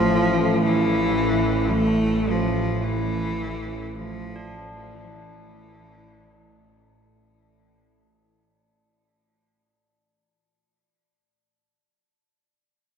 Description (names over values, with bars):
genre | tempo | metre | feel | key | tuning
dark ambient drone | 54 BPM | 4/4 | straight | unclear | A4 = 440 Hz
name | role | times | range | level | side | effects
rich cello | melody | 0.0-6.8 s | E3 to A3 | -22 LUFS | equal | ping-pong delay
bowed-like drone | drone | 0.0-7.5 s | A1 to A2 | -25 LUFS | equal | built-in reverb
tubular bells | arpeggios | 4.4-11.1 s | D4 | -46 LUFS | left 1 dB | none
room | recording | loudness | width
wet cathedral reverb, RT60 5.3 s | none | -20 LUFS | side -7 dB against mid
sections
0.0-7.3 A section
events
fade-out 0.0-7.3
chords
0.0 Dmadd9/A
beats
0.67 1.75 | 2.85 3.95 5.07 6.20